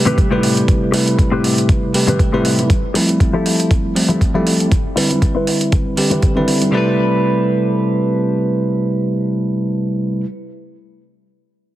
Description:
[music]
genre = nu-disco, nu disco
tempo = 119 BPM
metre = 4/4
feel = swing 55% on 16ths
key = A minor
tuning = A4 = 440 Hz
[part]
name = bell-like tine electric piano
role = accompaniment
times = 0.0-10.3 s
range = C3 to B4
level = -16 LUFS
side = equal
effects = sidechain pumping, ping-pong delay
[part]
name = direct-recorded clean electric guitar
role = riff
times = 0.1-10.3 s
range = A2 to B4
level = -22 LUFS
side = left 2 dB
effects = wide subtle chorus, low-pass filter, ping-pong delay
[part]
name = electronic hi-hat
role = drums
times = 0.1-6.7 s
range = none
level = -22 LUFS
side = right 2 dB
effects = overdrive
[part]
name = congas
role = percussion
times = 0.1-6.7 s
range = none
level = -27 LUFS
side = right 2 dB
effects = none
[part]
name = electronic kick drum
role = drums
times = 0.2-6.3 s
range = none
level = -15 LUFS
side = equal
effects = overdrive
[sound]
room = moderate plate reverb, RT60 2.3 s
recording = heavily compressed radio sound, multiband compression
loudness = -14 LUFS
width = side -14 dB against mid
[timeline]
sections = 0.0-6.7 A section; 6.7-10.8 B section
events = filter sweep on clean electric guitar 0.0-6.7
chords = 0.0 Am9; 2.7 Fmaj9; 4.7 Cmaj7; 6.7 Am9

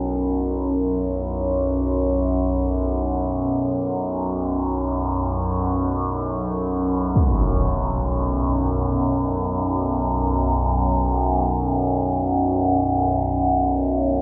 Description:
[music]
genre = dark ambient drone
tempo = free time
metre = none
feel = none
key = unclear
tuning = A4 = 438 Hz
[part]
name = overtone-sweeping drone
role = drone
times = 0.0-14.2 s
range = B1 to F#2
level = -22 LUFS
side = equal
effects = chorus, built-in reverb, phaser
[part]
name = quartz singing bowl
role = texture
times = 0.0-14.2 s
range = none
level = barely audible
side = none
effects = none
[part]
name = impact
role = percussion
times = 7.2-7.4 s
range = none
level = -27 LUFS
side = equal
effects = low-pass filter on sfx
[sound]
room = wet cathedral reverb, RT60 5.3 s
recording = in a vast, echoing space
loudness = -22 LUFS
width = mono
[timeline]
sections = 0.0-14.2 A section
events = none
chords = 0.0 B5

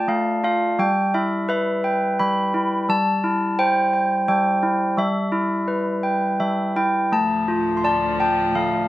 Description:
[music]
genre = children's music, lullaby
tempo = 85 BPM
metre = 3/4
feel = rubato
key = C major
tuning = A4 = 440 Hz
[part]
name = handbells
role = melody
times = 0.0-8.9 s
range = G3 to C6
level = -18 LUFS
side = equal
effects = none
[part]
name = clear chamber string section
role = sustained chords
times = 7.1-8.9 s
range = D2 to F3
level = -29 LUFS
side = left 1 dB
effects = none
[sound]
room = moderate studio reverb, RT60 0.6 s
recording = none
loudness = -18 LUFS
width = side -15 dB against mid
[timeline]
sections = 0.0-8.9 A section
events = none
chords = 0.0 Dm; 0.8 Em; 2.9 C; 5.0 G6; 7.1 Dm

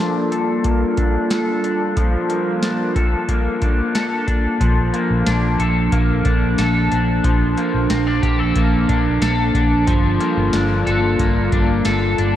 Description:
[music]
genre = dream pop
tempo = 91 BPM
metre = 4/4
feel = straight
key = unclear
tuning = A4 = 440 Hz
[part]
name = warbly tape-like pad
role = sustained chords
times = 0.0-12.4 s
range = F3 to A4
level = -21 LUFS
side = right 1 dB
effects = chorus, built-in reverb, low-pass filter
[part]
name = electric guitar at the edge of break-up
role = arpeggios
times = 0.0-12.4 s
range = F3 to A4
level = -21 LUFS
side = left 2 dB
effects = analog chorus, low-pass filter, tape echo
[part]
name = booming analog drum machine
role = drums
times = 0.3-12.3 s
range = hi-hat, kick drum, snare drum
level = -20 LUFS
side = equal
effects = overdrive
[part]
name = vintage muted fingered electric bass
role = bass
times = 4.6-12.4 s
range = G1 to Bb1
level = -21 LUFS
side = equal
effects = none
[sound]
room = moderate lush hall reverb, RT60 1.9 s, digital ambience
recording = worn, warbling old tape, cassette tape, warbly pitch drift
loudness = -15 LUFS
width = side -11 dB against mid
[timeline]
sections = 0.0-12.4 A section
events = filter sweep 0.0-12.4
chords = 0.0 Gm9; 4.6 Bbmaj7; 9.9 Gm9

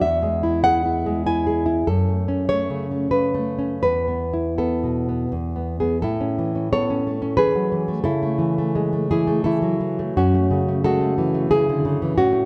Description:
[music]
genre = romantic piece for solo classical guitar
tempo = 80-102 BPM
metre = 3/4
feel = rubato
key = A major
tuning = A4 = 442 Hz
[part]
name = nylon-string guitar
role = solo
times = 0.0-12.5 s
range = E2 to G#5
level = -21 LUFS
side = equal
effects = none
[sound]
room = moderate scoring stage reverb, RT60 1.6 s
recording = nothing above 10.5 kHz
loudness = -21 LUFS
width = mono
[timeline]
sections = 0.0-6.0 A section; 6.0-12.5 B section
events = none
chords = 0.0 E; 1.9 F#m; 3.8 Esus4; 5.3 E; 6.0 A; 8.1 A/C#; 10.2 F#m7

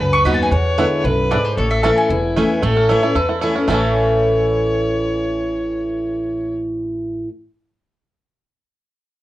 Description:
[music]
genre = bluegrass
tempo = 228 BPM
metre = 4/4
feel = straight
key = A major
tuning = A4 = 445 Hz
[part]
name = mandolin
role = melody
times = 0.0-7.2 s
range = C5 to C#6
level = -22 LUFS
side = equal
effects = plate reverb
[part]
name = dark fiddle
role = second line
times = 0.0-6.5 s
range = E4 to C#5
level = -23 LUFS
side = left 2 dB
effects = none
[part]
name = picked steel-string acoustic guitar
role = accompaniment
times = 0.0-7.3 s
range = E2 to F#4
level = -18 LUFS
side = equal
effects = none
[part]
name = upright bass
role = bass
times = 0.0-7.2 s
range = E1 to E2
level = -22 LUFS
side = right 1 dB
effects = none
[part]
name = bluegrass banjo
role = melody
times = 0.3-7.3 s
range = A3 to A4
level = -23 LUFS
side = right 3 dB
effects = plate reverb
[sound]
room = moderate small room reverb, RT60 0.5 s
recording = worn, warbling old tape, cassette tape, warbly pitch drift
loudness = -15 LUFS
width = side -15 dB against mid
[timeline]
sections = 0.0-2.6 A section; 2.6-3.7 B section; 3.7-5.8 C section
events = none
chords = 0.0 B; 0.5 E7; 1.6 A

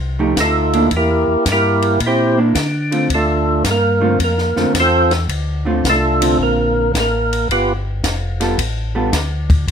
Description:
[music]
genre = soul jazz organ trio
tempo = 110 BPM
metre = 4/4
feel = swing 67% on 8ths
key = unclear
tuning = A4 = 441 Hz
[part]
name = tonewheel organ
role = bass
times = 0.0-9.7 s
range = F1 to D3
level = -20 LUFS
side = left 1 dB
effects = overdrive, slow rotary speaker
[part]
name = vintage hollow-body jazz guitar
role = accompaniment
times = 0.2-9.1 s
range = D3 to A4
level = -18 LUFS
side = right 1 dB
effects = none
[part]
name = percussive tonewheel organ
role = melody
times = 0.4-7.7 s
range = A3 to C5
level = -15 LUFS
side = right 1 dB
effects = overdrive, slow rotary speaker
[part]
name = compact cocktail drum kit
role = drums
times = 0.4-9.7 s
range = hi-hat, kick drum, ride cymbal, snare drum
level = -21 LUFS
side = left 1 dB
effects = none
[sound]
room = moderate studio reverb, RT60 0.6 s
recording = none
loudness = -14 LUFS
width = side -7 dB against mid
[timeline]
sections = 0.0-9.7 A section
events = tonewheel organ solo 0.0-9.7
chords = 0.0 F9; 0.9 C9; 3.1 Dm7; 7.5 G9

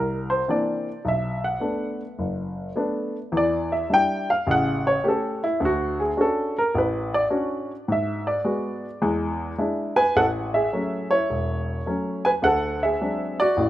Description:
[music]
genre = solo jazz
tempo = 105 BPM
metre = 4/4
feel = swing 67% on 8ths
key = A major from 10.2 s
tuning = A4 = 440 Hz
[part]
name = warm baby grand piano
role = solo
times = 0.0-13.7 s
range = E1 to G#5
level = -21 LUFS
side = equal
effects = none
[sound]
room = light reverb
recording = rough home demo mix, nothing above 10.9 kHz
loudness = -21 LUFS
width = side -14 dB against mid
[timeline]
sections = 0.0-10.2 A section; 10.2-13.7 B section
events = grand piano solo 0.0-10.2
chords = 0.0 C9; 1.0 Bm7; 3.3 Em7; 4.5 A7; 5.6 Dmaj7; 7.9 G#m7b5; 9.0 E7; 10.2 A6; 12.4 D7#11

